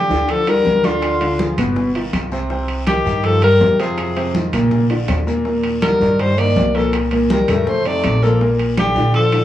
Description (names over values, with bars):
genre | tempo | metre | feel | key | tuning
Afro-Cuban jazz | 163 BPM | 4/4 | straight | unclear | A4 = 442 Hz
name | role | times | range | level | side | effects
clear alto saxophone | melody | 0.0-9.4 s | F4 to D5 | -17 LUFS | left 1 dB | plate reverb
breathy trombone | second line | 0.0-9.4 s | D3 to Bb3 | -23 LUFS | left 2 dB | none
clear grand piano | accompaniment | 0.0-9.4 s | A2 to D5 | -20 LUFS | equal | none
upright bass | bass | 0.1-9.4 s | G1 to Bb2 | -21 LUFS | right 1 dB | none
bongos | percussion | 0.1-9.3 s | none | -31 LUFS | left 4 dB | none
congas | percussion | 0.1-9.4 s | none | -24 LUFS | equal | none
guiro | percussion | 0.1-9.4 s | none | -36 LUFS | left 4 dB | none
timbales | percussion | 0.3-9.4 s | none | -29 LUFS | right 4 dB | none
claves | percussion | 0.5-9.4 s | none | -38 LUFS | right 4 dB | none
room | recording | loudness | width
moderate studio reverb, RT60 0.8 s | worn, warbling old tape, cassette tape, warbly pitch drift, small room ambience | -14 LUFS | side -12 dB against mid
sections
0.0-9.4 A section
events
none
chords
0.0 Gm7; 1.0 Ddim; 1.8 Gaug7; 2.5 Cm7; 4.0 Fm7; 4.7 Bb; 5.5 Ebmaj7; 6.9 Cm7; 7.7 F7; 8.4 Bbmaj7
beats
0.29 0.66 | 1.02 1.39 1.76 2.13 | 2.50 2.87 3.24 3.61 | 3.98 4.35 4.72 5.09 | 5.46 5.82 6.19 6.56 | 6.93 7.30 7.67 8.04 | 8.41 8.78 9.14